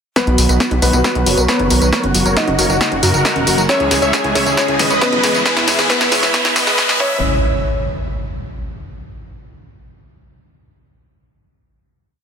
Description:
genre	uplifting trance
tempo	136 BPM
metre	4/4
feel	straight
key	unclear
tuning	A4 = 441 Hz
part	big supersaw lead	melody	0.2-7.2 s	E4 to E5	-20 LUFS	equal	sidechain pumping, low-pass filter, ping-pong delay
part	dark concert grand piano	second line	0.2-7.2 s	B3 to D#5	-20 LUFS	equal	tape echo
part	analog string pad	sustained chords	0.2-7.2 s	B2 to F#4	-23 LUFS	right 1 dB	ensemble chorus, sidechain pumping
part	wide unison pluck	arpeggios	0.2-7.2 s	A#3 to G#5	-24 LUFS	left 1 dB	sidechain pumping, tape echo
part	electronic kick drum	drums	0.2-7.1 s	none	-19 LUFS	equal	overdrive, high-pass filter on kick
part	punchy analog drum machine	drums	0.2-7.0 s	hi-hat, snare drum, tambourine, toms	-18 LUFS	equal	overdrive, high-pass filter on snare, high-pass filter on hats, high-pass filter on perc, high-pass filter on toms
part	riser and impact	sound effects	2.2-8.8 s	none	-22 LUFS	equal	none
part	gritty driven synth bass	bass	0.3-7.2 s	E1 to F#2	-19 LUFS	equal	sidechain pumping
room	moderate lush hall reverb, RT60 2.5 s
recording	dense, heavily limited modern master, high-pass filter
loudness	-12 LUFS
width	side -7 dB against mid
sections	0.2-7.2 build; 7.2-9.0 final hit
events	build-up 0.2-7.2; drum fill 0.2-7.2; filter sweep on supersaw synth 0.2-7.2; filter sweep on synth arpeggio sound 0.2-7.2; filter sweep 0.2-7.2; riser 2.2-7.2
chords	0.2 B; 1.9 F#; 3.7 C#m; 5.5 E; 7.0 C#m; 7.2 N.C.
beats	| 0.16 0.60 1.04 1.49 | 1.93 2.37 2.81 3.25 | 3.69 4.13 4.57 5.01 | 5.46 5.90 6.34 6.78 | 7.22 7.66 8.10 8.54

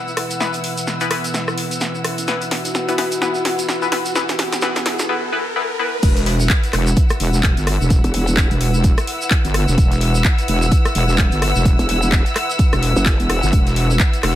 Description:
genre	bass house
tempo	128 BPM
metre	4/4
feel	swing 58% on 16ths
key	unclear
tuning	A4 = 441 Hz
part	dark analog pad	sustained chords	0.0-14.4 s	B3 to F#5	-28 LUFS	equal	chorus, sidechain pumping
part	band-passed chord stab	stabs	0.0-6.0 s	E3 to D5	-24 LUFS	left 4 dB	chorus, sidechain pumping, digital delay
part	riser	sound effects	1.1-6.0 s	none	-28 LUFS	equal	none
part	muted studio string section	texture	0.0-14.4 s	E4 to E6	-24 LUFS	left 1 dB	sidechain pumping
part	tube shaker	percussion	0.1-14.2 s	none	-30 LUFS	right 2 dB	none
part	house drum kit	drums	0.2-14.3 s	crash cymbal, handclaps, hi-hat, rim click, snare drum	-23 LUFS	equal	high-pass filter on hats, high-pass filter on snare, high-pass filter on cymbals
part	wobble bass	bass	6.0-14.4 s	E1 to G1	-17 LUFS	equal	chorus, tube saturation, sidechain pumping
part	electronic kick drum	drums	6.0-14.1 s	none	-16 LUFS	equal	overdrive
part	growl bass	bass	8.0-8.5, 11.8-13.4 s	E1 to F#1	-18 LUFS	equal	chorus, sidechain pumping
room	light reverb, digital ambience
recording	high-pass filter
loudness	-15 LUFS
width	side -13 dB against mid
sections	0.0-6.0 A section; 6.0-14.4 B section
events	build-up 0.0-6.0; drum fill 0.0-5.1; filter sweep on analog synth pad 0.0-6.0; riser 1.1-6.0; drop 6.0-14.4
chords	0.0 E5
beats	| 0.40 0.87 1.34 1.81 | 2.28 2.75 3.22 3.69 | 4.15 4.62 5.09 5.56 | 6.03 6.50 6.97 7.43 | 7.90 8.37 8.84 9.31 | 9.78 10.25 10.72 11.19 | 11.65 12.12 12.59 13.06 | 13.53 14.00

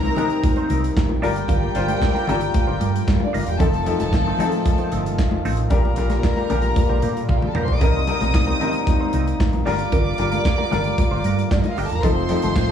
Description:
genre	disco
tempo	114 BPM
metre	4/4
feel	straight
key	C dorian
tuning	A4 = 441 Hz
part	warm studio violin section	second line	0.0-12.7 s	D4 to Eb6	-27 LUFS	left 1 dB	none
part	clear baby grand piano	accompaniment	0.0-12.7 s	Bb2 to C5	-26 LUFS	left 6 dB	none
part	mellow electric guitar	accompaniment	0.0-12.7 s	C4 to C5	-30 LUFS	right 6 dB	wah
part	mellow French horn section	sustained chords	0.0-12.7 s	C3 to F4	-27 LUFS	right 1 dB	none
part	hollow-body short-scale fingered electric bass	bass	0.0-12.7 s	E1 to Bb2	-23 LUFS	right 1 dB	none
part	modern studio drum kit	drums	0.0-12.7 s	handclaps, hi-hat, kick drum, snare drum, toms	-23 LUFS	right 1 dB	none
part	congas	percussion	0.0-12.7 s	none	-29 LUFS	left 7 dB	none
room	small room ambience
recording	studio reverb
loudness	-18 LUFS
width	side -8 dB against mid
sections	0.0-12.7 A section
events	drum fill 7.3-7.8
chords	0.0 Cm7; 1.2 Gm7; 3.6 F7; 5.7 Bb6; 7.8 Cm7; 9.7 Gm7; 12.0 F7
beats	0.43 0.96 | 1.49 2.02 2.54 3.07 | 3.60 4.12 4.65 5.18 | 5.71 6.23 6.76 7.29 | 7.82 8.34 8.87 9.40 | 9.93 10.45 10.98 11.51 | 12.03 12.56

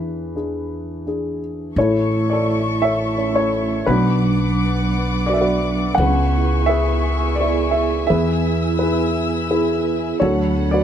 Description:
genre	acoustic folk-pop ballad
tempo	85 BPM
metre	3/4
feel	straight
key	unclear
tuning	A4 = 440 Hz
part	dark upright piano	melody	0.0-10.8 s	C#3 to F#5	-20 LUFS	left 1 dB	none
part	upright bass	bass	0.0-10.8 s	A1 to E2	-23 LUFS	equal	none
part	muted studio string section	sustained chords	1.8-10.8 s	A4 to E6	-27 LUFS	left 5 dB	none
part	vibraphone with soft mallets	arpeggios	1.8-10.8 s	F#3 to A4	-22 LUFS	right 4 dB	none
room	little or no reverb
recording	none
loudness	-17 LUFS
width	side -9 dB against mid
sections	0.0-1.8 A section; 1.8-10.8 B section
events	none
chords	0.0 E7; 1.8 A; 3.9 Bm; 6.0 C#m7; 8.1 E; 10.2 D6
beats	0.35 1.06 | 1.76 2.47 3.18 | 3.88 4.58 5.29 | 5.99 6.69 7.39 | 8.10 8.80 9.50 | 10.20

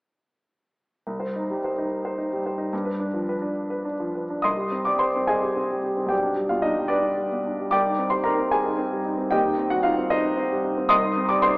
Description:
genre	classical, romantic character piece for solo piano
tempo	63-77 BPM (dotted quarters)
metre	6/8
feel	rubato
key	C minor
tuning	A4 = 439 Hz
part	clear concert grand piano	solo	1.1-11.6 s	B1 to Eb6	-21 LUFS	equal	none
room	wet concert hall reverb, RT60 1.8 s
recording	AM radio sound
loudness	-22 LUFS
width	side -26 dB against mid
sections	1.1-4.5 A section; 4.5-11.6 B section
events	none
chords	1.1 Cm; 2.7 G7; 4.5 Cm; 6.1 G/B; 7.7 Cm; 9.3 Cm/Eb; 10.9 Cm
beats	| 1.07 1.91 | 2.72 3.55 | 4.45 5.30 | 6.12 6.92 | 7.73 8.54 | 9.33 10.13 | 10.91

